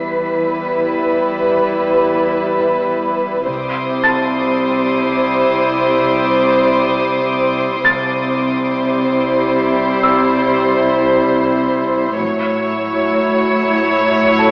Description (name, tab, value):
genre	cinematic, suspense film score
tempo	55 BPM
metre	4/4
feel	straight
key	unclear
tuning	A4 = 440 Hz
part	dark chamber violin section	melody	0.0-14.5 s	B4 to C#5	-20 LUFS	equal	none
part	dark studio viola section	accompaniment	0.0-14.5 s	F#3 to E4	-20 LUFS	equal	none
part	warm studio cello section	bass	0.0-14.5 s	E2 to C3	-24 LUFS	equal	none
part	warm studio double bass section	bass	0.0-13.3 s	E1 to C2	-38 LUFS	equal	none
part	rich symphonic violin section	texture	0.0-14.5 s	C6 to C7	-28 LUFS	equal	none
part	felt-muted upright piano	texture	4.0-14.5 s	A4 to A6	-22 LUFS	equal	none
room	moderate scoring stage reverb, RT60 2.1 s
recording	AM radio sound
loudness	-16 LUFS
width	mono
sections	0.0-14.5 A section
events	none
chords	0.0 Em; 3.5 C; 12.2 A6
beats	0.21 1.30 2.39 | 3.48 4.57 5.66 6.75 | 7.84 8.94 10.03 11.12 | 12.21 13.30 14.39